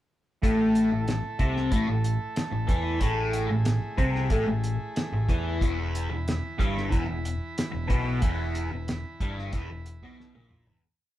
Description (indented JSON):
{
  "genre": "psychedelic rock",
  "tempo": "92 BPM",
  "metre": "4/4",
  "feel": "straight",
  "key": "unclear",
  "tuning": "A4 = 440 Hz",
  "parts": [
    { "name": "combo organ", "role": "sustained chords", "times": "0.4-10.8 s", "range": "E3 to B5", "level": "-37 LUFS", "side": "right 2 dB", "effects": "none" },
    { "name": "fuzz guitar", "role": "riff", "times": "0.4-10.8 s", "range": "E2 to E4", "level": "-27 LUFS", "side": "left 1 dB", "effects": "distortion, phaser" },
    { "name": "picked electric bass", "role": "bass", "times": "0.4-10.8 s", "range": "E1 to E2", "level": "-33 LUFS", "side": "equal", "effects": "none" },
    { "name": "cloth-damped thuddy drum kit", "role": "drums", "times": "0.4-10.8 s", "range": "hi-hat, kick drum, snare drum, toms", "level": "-28 LUFS", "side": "equal", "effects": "none" }
  ],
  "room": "moderate studio reverb, RT60 0.7 s",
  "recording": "band playing live in one room",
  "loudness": "-24 LUFS",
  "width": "side -14 dB against mid",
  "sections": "0.4-10.8 riff",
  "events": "fade-out 8.2-10.8; drum fill 10.2-10.8",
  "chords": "0.4 A5; 5.6 E5"
}